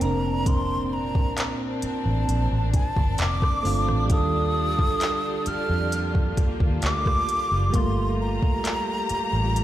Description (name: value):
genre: contemporary R&B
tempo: 66 BPM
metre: 4/4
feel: straight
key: Bb major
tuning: A4 = 440 Hz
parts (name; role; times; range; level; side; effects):
- breathy concert flute; melody; 0.0-9.6 s; A5 to F6; -28 LUFS; equal; tape echo
- soft electric-piano-like synth keys; accompaniment; 0.0-9.6 s; G3 to Bb4; -30 LUFS; right 3 dB; chorus, tremolo
- warm studio string section; sustained chords; 0.0-9.6 s; Bb2 to Bb5; -32 LUFS; left 1 dB; none
- vintage muted fingered electric bass; bass; 0.0-9.6 s; F1 to F2; -25 LUFS; equal; none
- smooth R&B drum kit; drums; 0.0-9.6 s; handclaps, hi-hat, kick drum, rim click; -24 LUFS; equal; none
room: little or no reverb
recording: played on a big sound system in a bare room, large studio reverb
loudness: -21 LUFS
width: side -13 dB against mid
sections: 0.0-9.6 A section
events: none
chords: 0.0 Bbmaj9/F; 4.1 Ebmaj9#11; 7.7 Gm9